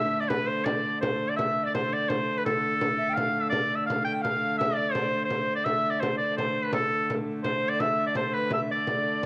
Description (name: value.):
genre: medieval dance.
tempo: 168 BPM.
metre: 3/4.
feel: straight.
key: D dorian.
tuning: A4 = 440 Hz.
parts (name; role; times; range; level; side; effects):
clear shawm; melody; 0.0-9.3 s; A4 to G5; -29 LUFS; equal; none.
alto recorder; second line; 0.0-9.3 s; A4 to G5; -37 LUFS; equal; none.
dark hurdy-gurdy; drone; 0.0-9.3 s; D3 to A3; -35 LUFS; equal; none.
frame drum; percussion; 0.3-9.3 s; none; -35 LUFS; equal; none.
room: moderate spring reverb, RT60 1.4 s, studio ambience.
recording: none.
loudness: -27 LUFS.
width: mono.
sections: 0.0-1.4 A section; 1.4-9.3 B section.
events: none.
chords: none.